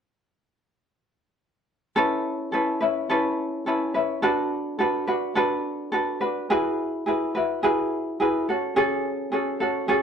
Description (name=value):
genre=pop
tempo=106 BPM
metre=4/4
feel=straight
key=A major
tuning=A4 = 439 Hz
part: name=ukulele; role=accompaniment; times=2.0-10.0 s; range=C#4 to B4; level=-22 LUFS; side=equal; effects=none
room=moderate studio reverb, RT60 0.8 s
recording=dark, warm production, lossy compression artefacts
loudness=-22 LUFS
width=side -7 dB against mid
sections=2.0-10.0 A section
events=none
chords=2.0 Aadd9; 4.2 Bm7; 6.5 Eadd9; 8.5 F#madd9